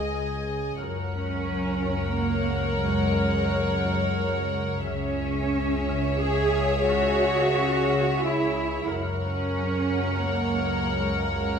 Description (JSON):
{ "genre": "cinematic, suspense film score", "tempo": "89 BPM", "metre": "3/4", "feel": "straight", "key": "unclear", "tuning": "A4 = 439 Hz", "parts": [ { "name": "rich studio violin section", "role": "melody", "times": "0.0-11.6 s", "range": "E5 to G#5", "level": "-34 LUFS", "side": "left 4 dB", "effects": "none" }, { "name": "clear studio violin section", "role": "second line", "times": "0.0-11.6 s", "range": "C#5 to D#5", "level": "-31 LUFS", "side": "left 2 dB", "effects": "none" }, { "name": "warm studio viola section", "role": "accompaniment", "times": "0.0-11.6 s", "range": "G#4 to A#4", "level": "-30 LUFS", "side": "equal", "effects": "none" }, { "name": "warm studio cello section", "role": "bass", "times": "0.0-11.6 s", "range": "G#3 to G#4", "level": "-28 LUFS", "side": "right 3 dB", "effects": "none" }, { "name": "warm studio double bass section", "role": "bass", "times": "0.0-11.6 s", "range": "C#2 to F#2", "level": "-33 LUFS", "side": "right 3 dB", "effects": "none" }, { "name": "analog drone", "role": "drone", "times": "0.0-11.6 s", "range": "C#2", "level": "-33 LUFS", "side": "right 1 dB", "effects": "chorus" }, { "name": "marimba with medium mallets", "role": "riff", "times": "0.1-11.5 s", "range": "F#2 to C#4", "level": "-31 LUFS", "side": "left 4 dB", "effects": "none" } ], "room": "moderate concert hall reverb, RT60 1.9 s", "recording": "none", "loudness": "-23 LUFS", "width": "side -7 dB against mid", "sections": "0.0-11.6 A section", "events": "none", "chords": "0.0 C#sus2; 0.8 F#add9/C#; 4.9 C#m; 8.9 F#add9/C#" }